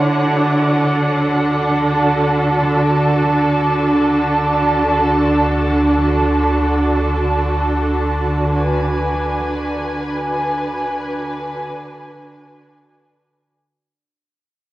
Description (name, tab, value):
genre	ambient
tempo	free time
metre	none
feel	none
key	D lydian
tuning	A4 = 438 Hz
part	muted studio string section	sustained chords	0.0-13.5 s	D3 to A5	-15 LUFS	right 1 dB	cassette tape
part	deep rumbling drone	bass	1.7-13.4 s	D2	-24 LUFS	equal	built-in reverb
room	wet studio reverb, RT60 0.6 s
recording	home recording on cassette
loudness	-14 LUFS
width	side -15 dB against mid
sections	0.0-13.5 A section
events	fade-out on synth drone 0.0-13.5; fade-out 8.8-13.5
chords	0.0 D